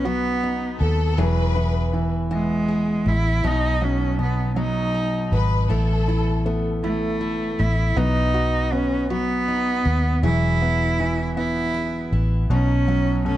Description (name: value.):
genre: six-eight pop ballad.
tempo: 53 BPM (dotted quarters).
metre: 6/8.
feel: straight.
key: B mixolydian.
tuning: A4 = 440 Hz.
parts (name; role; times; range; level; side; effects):
rich cello; melody; 0.0-13.4 s; G#3 to E4; -24 LUFS; right 1 dB; none.
clear baby grand piano; accompaniment; 0.0-13.4 s; B2 to F#4; -26 LUFS; right 2 dB; none.
picked steel-string acoustic guitar; arpeggios; 0.0-13.4 s; E3 to G#4; -32 LUFS; left 6 dB; none.
vintage muted fingered electric bass; bass; 0.0-13.4 s; E1 to D#2; -23 LUFS; equal; none.
rich studio violin section; second line; 0.8-6.7 s; A4 to B4; -29 LUFS; left 3 dB; none.
room: light reverb, small room ambience.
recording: dark, warm production, nothing above 10.9 kHz.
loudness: -19 LUFS.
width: side -13 dB against mid.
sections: 0.0-13.4 A section.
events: none.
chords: 0.0 B; 1.2 Eadd9; 3.4 B; 5.7 Asus2; 8.0 B; 10.2 Eadd9; 12.5 B.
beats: 0.04 | 1.17 2.31 | 3.44 4.57 | 5.71 6.84 | 7.97 9.10 | 10.23 11.37 | 12.50.